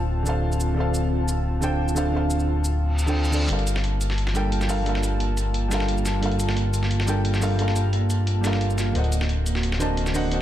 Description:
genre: liquid drum and bass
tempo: 176 BPM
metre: 4/4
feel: straight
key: G minor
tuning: A4 = 440 Hz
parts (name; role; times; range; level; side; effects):
- felt-muted upright piano; accompaniment; 0.0-10.4 s; D3 to A5; -27 LUFS; right 1 dB; digital delay
- airy breathy pad; sustained chords; 0.0-10.4 s; Bb3 to A5; -30 LUFS; right 1 dB; chorus
- smooth synth bass; bass; 0.0-10.4 s; D1 to G1; -23 LUFS; equal; none
- shaker; drums; 0.3-10.2 s; none; -36 LUFS; equal; studio reverb
- reverse cymbal; sound effects; 2.9-3.5 s; none; -32 LUFS; equal; none
- dusty soul sampler-style drum kit; drums; 3.5-10.4 s; hi-hat, snare drum; -32 LUFS; equal; high-pass filter on hats, studio reverb, high-pass filter on snare, high-pass filter on room
room: light reverb, digital ambience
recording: dark, warm production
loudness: -21 LUFS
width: side -12 dB against mid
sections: 0.0-10.4 A section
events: filter sweep on analog synth pad 0.0-10.4; reverse cymbal 2.9-3.5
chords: 0.0 Dm7; 3.5 Gm7; 9.0 D7b9b13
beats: 0.09 0.43 | 0.77 1.11 1.45 1.79 | 2.13 2.48 2.82 3.16 | 3.50 3.84 4.18 4.52 | 4.86 5.20 5.54 5.88 | 6.22 6.57 6.91 7.25 | 7.59 7.93 8.27 8.61 | 8.95 9.29 9.63 9.97 | 10.32

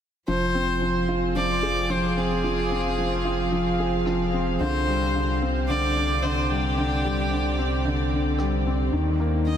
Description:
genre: piano and strings electronica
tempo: 111 BPM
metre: 4/4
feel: straight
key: F dorian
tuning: A4 = 440 Hz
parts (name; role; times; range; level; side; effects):
- bright violin; melody; 0.3-9.6 s; G4 to Eb5; -28 LUFS; equal; shimmer reverb, diffuse ambient delay
- clear studio string section; sustained chords; 0.3-9.6 s; C3 to F5; -32 LUFS; equal; shimmer reverb
- felt-muted upright piano; riff; 0.3-9.6 s; D3 to Ab4; -25 LUFS; left 1 dB; shimmer reverb, diffuse ambient delay
- round analog bass; bass; 0.3-9.6 s; F1 to Eb2; -27 LUFS; equal; none
- rim click; drums; 1.9-8.5 s; none; barely audible; none; none
room: moderate huge ambient reverb, RT60 9.2 s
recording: dreamy mix soaked in reverb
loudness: -22 LUFS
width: side -9 dB against mid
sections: 0.3-9.6 A section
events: none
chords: 0.3 Fm; 4.6 Csus2; 8.9 Eb5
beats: | 0.28 0.82 1.36 1.90 | 2.44 2.98 3.52 4.06 | 4.60 5.14 5.68 6.22 | 6.76 7.31 7.85 8.39 | 8.93 9.47

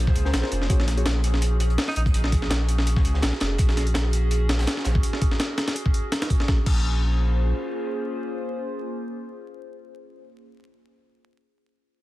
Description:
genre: drum and bass, jungle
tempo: 166 BPM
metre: 4/4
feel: swing 54% on 16ths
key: Bb minor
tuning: A4 = 441 Hz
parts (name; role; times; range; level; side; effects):
- warbly tape-like pad; sustained chords; 0.0-10.0 s; Bb3 to C5; -32 LUFS; equal; chorus, built-in reverb, phaser
- saturated sub bass; bass; 0.0-7.5 s; F1 to Db2; -22 LUFS; equal; none
- breakbeat sampler-style drum kit; drums; 0.1-6.8 s; crash cymbal, hi-hat, kick drum, snare drum; -23 LUFS; equal; none
- crunchy breakbeat drum kit; drums; 0.1-4.9 s; hi-hat, snare drum; -37 LUFS; equal; high-pass filter on hats, high-pass filter on snare, high-pass filter on room
- deep mellow chord stab; stabs; 0.3-1.1 s; Db4 to Db5; -33 LUFS; left 2 dB; chorus, dub echo
- bright tenor saxophone; melody; 1.9-2.0 s; Eb4; -34 LUFS; right 1 dB; vintage 12-bit sampler grit, dub echo
room: small room ambience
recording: dense, heavily limited modern master, vinyl crackle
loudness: -21 LUFS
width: side -17 dB against mid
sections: 0.0-6.5 A section; 6.5-9.4 B section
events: drop 0.0-6.5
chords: 0.0 Bbm9; 0.7 Gbsus2; 6.5 Bbm9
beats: 0.34 | 0.70 1.06 1.42 1.78 | 2.14 2.51 2.87 3.23 | 3.59 3.95 4.31 4.67 | 5.04 5.40 5.76 6.12 | 6.48 6.84 7.20 7.57 | 7.93 8.29 8.65 9.01

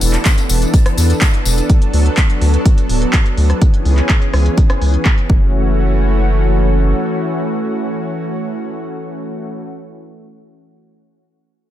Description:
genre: progressive house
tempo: 125 BPM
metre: 4/4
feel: straight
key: F# minor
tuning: A4 = 440 Hz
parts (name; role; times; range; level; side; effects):
- lush unison pad; sustained chords; 0.0-9.6 s; E3 to A4; -19 LUFS; equal; chorus, sidechain pumping
- round analog bass; bass; 0.0-6.9 s; D1 to E2; -14 LUFS; equal; sidechain pumping
- deep house drum kit; drums; 0.0-5.3 s; handclaps, hi-hat, rim click; -21 LUFS; equal; low-pass filter on hats, low-pass filter on snare, low-pass filter on toms, low-pass filter on cymbals
- huge arena drum kit; drums; 0.0-1.6 s; hi-hat, snare drum; -31 LUFS; left 2 dB; none
- tambourine; percussion; 0.0-1.7 s; none; -24 LUFS; left 5 dB; none
- downlifter; sound effects; 0.0-1.7 s; none; barely audible; none; none
- electronic kick drum; drums; 0.3-5.4 s; none; -12 LUFS; equal; none
room: studio reverb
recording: none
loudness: -12 LUFS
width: side -12 dB against mid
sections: 0.0-5.5 A section; 5.5-9.4 B section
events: none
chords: 0.0 E7sus4; 1.7 Bm7/D; 3.6 C#m7; 5.3 F#m7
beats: 0.26 0.74 1.22 | 1.70 2.18 2.66 3.14 | 3.62 4.10 4.58 5.06 | 5.54 6.02 6.50 6.98 | 7.46 7.94 8.42 8.90

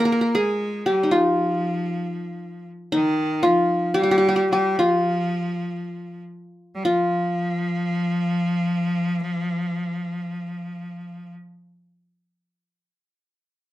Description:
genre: Turkish makam ensemble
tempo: free time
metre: none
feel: none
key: F makam ussak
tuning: A4 = 439 Hz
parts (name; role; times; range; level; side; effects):
- qanun; melody; 0.0-11.3 s; Eb4 to Bb4; -21 LUFS; left 1 dB; none
- bright cello; second line; 0.0-11.3 s; Eb3 to Bb3; -25 LUFS; equal; none
room: moderate studio ambience, RT60 0.5 s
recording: minimal, uncompressed stereo recording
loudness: -20 LUFS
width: side -15 dB against mid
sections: 0.0-6.8 A section; 6.8-11.3 B section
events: slowing down 2.9-6.8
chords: none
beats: free time

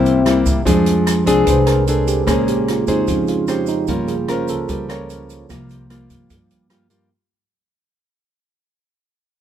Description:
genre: bossa nova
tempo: 149 BPM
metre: 4/4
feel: straight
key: F minor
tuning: A4 = 441 Hz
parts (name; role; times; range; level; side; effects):
- breathy trombone; melody; 0.0-0.5 s; C4; -16 LUFS; left 4 dB; none
- nylon-string guitar; accompaniment; 0.0-7.1 s; G2 to C5; -18 LUFS; left 2 dB; none
- tine electric piano; accompaniment; 0.0-7.1 s; Db3 to Db5; -21 LUFS; right 5 dB; none
- upright bass; bass; 0.0-7.1 s; G1 to G2; -24 LUFS; equal; none
- open jazz drum kit; drums; 0.1-7.0 s; hi-hat, kick drum, rim click; -24 LUFS; equal; none
- tube shaker; percussion; 0.1-7.1 s; none; -35 LUFS; right 8 dB; none
room: light reverb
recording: band playing live in one room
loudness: -14 LUFS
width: side -10 dB against mid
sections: 0.7-7.1 A section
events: fade-out 0.7-7.1; tine electric piano solo 0.7-7.1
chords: 0.0 C7; 0.7 Fm6; 2.3 Bbm9; 3.9 Gm7b5; 5.5 C7sus4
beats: 0.26 | 0.66 1.06 1.47 1.87 | 2.27 2.67 3.08 3.48 | 3.88 4.28 4.68 5.09 | 5.49 5.89 6.30 6.70

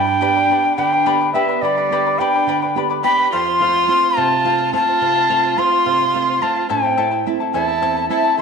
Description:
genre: andean folk, Andean ensemble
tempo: 71 BPM (dotted quarters)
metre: 6/8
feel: straight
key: unclear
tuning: A4 = 440 Hz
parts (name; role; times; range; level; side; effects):
- reedy quena; melody; 0.0-8.4 s; D5 to C6; -16 LUFS; left 2 dB; none
- dark violin; second line; 0.0-8.4 s; G3 to A4; -22 LUFS; right 10 dB; none
- charango; accompaniment; 0.0-8.4 s; E4 to B5; -23 LUFS; left 10 dB; none
- nylon-string guitar; accompaniment; 0.0-8.4 s; E2 to G4; -25 LUFS; right 10 dB; none
room: wet echo chamber reverb, RT60 1.5 s, studio reverb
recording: 1960s-style stereo with parts hard left and right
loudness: -14 LUFS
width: side -5 dB against mid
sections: 0.0-8.4 A section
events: none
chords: 0.0 G; 3.3 F; 6.7 Am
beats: 0.78 | 1.63 2.48 | 3.33 4.17 | 5.02 5.86 | 6.70 7.54 | 8.38

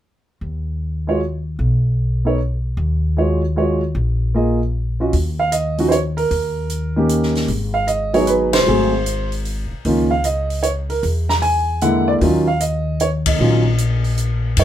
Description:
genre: jazz piano trio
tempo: 152 BPM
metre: 3/4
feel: swing 66% on 8ths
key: Eb minor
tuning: A4 = 440 Hz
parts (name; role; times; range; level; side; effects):
- upright bass; bass; 0.4-14.6 s; Ab1 to Gb2; -20 LUFS; left 1 dB; none
- dark upright piano; melody; 1.1-14.6 s; D3 to A#5; -18 LUFS; right 1 dB; none
- open jazz drum kit; drums; 5.1-14.6 s; hi-hat, kick drum, ride cymbal, snare drum; -26 LUFS; left 2 dB; none
room: moderate club reverb, RT60 0.6 s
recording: minimal, uncompressed stereo recording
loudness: -16 LUFS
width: side -11 dB against mid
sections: 0.4-5.1 A section; 5.1-14.6 B section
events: band accent 8.5, 13.2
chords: 0.4 N.C.; 2.8 Ebm11; 4.0 Bbsus4; 5.1 Ebsus2; 7.5 Abm7; 9.9 Db69; 11.0 E7#11; 12.2 Eb7sus2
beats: | 0.41 0.80 1.20 | 1.59 1.99 2.38 | 2.77 3.17 3.56 | 3.95 4.35 4.74 | 5.13 5.53 5.92 | 6.31 6.71 7.10 | 7.49 7.89 8.28 | 8.67 9.07 9.46 | 9.85 10.25 10.64 | 11.03 11.43 11.82 | 12.21 12.61 13.00 | 13.39 13.79 14.18 | 14.57

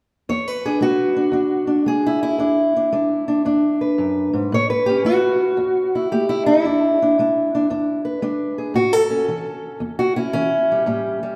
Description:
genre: acoustic country blues, solo or duo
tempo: 113 BPM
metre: 4/4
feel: swing 66% on 8ths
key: E mixolydian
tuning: A4 = 440 Hz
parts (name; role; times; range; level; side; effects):
- fingerpicked steel-string acoustic guitar; solo; 0.3-11.4 s; E2 to C#5; -19 LUFS; equal; none
room: wet concert hall reverb, RT60 2.3 s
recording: recorded in a church or concert hall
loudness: -19 LUFS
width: mono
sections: 0.3-11.4 A section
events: none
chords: 0.3 E7; 4.5 A7; 6.6 E7; 8.8 A7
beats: | 0.27 0.80 1.33 1.87 | 2.40 2.93 3.46 3.99 | 4.52 5.05 5.58 6.11 | 6.64 7.17 7.70 8.22 | 8.75 9.28 9.81 10.34 | 10.87

